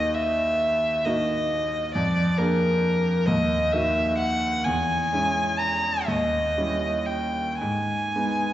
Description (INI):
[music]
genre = classical, romantic duo for violin and grand piano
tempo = 37-46 BPM (dotted quarters)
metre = 6/8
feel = rubato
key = unclear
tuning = A4 = 439 Hz
[part]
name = rich violin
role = melody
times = 0.0-8.5 s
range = A#4 to A#5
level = -24 LUFS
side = equal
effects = none
[part]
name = bright grand piano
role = accompaniment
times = 0.0-8.5 s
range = D#2 to G#4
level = -25 LUFS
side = equal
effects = none
[sound]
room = wet scoring stage reverb, RT60 1.7 s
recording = heard from further back in the room, nothing above 7.9 kHz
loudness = -22 LUFS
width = side -13 dB against mid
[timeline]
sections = 0.0-8.5 A section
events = none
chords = 0.0 D#m; 2.0 A#7/E#; 3.3 D#m; 4.7 C#m/E; 6.1 D#7b9; 7.6 G#m